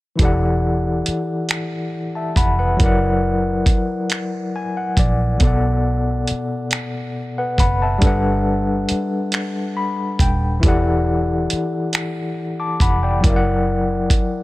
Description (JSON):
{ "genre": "slow six-eight R&B", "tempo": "46 BPM (dotted quarters)", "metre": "6/8", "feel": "straight", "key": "E minor", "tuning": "A4 = 440 Hz", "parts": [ { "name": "overdriven tine electric piano", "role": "accompaniment", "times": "0.2-14.4 s", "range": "B2 to D6", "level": "-20 LUFS", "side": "left 2 dB", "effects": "medium tremolo" }, { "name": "vintage muted fingered electric bass", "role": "bass", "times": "0.2-14.1 s", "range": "D#1 to B1", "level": "-21 LUFS", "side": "equal", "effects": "none" }, { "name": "dusty soul sampler-style drum kit", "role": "drums", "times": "0.2-14.3 s", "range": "finger snaps, hi-hat, kick drum", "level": "-18 LUFS", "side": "equal", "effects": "vintage 12-bit sampler grit" } ], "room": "digital ambience", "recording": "none", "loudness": "-17 LUFS", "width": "side -18 dB against mid", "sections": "0.2-14.4 A section", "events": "tine electric piano fill 4.1-5.4, 9.3-10.6", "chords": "0.2 Em11; 2.8 F#7b13; 5.4 Bm7; 8.0 Gmaj7; 10.6 Em11; 13.2 F#7b13" }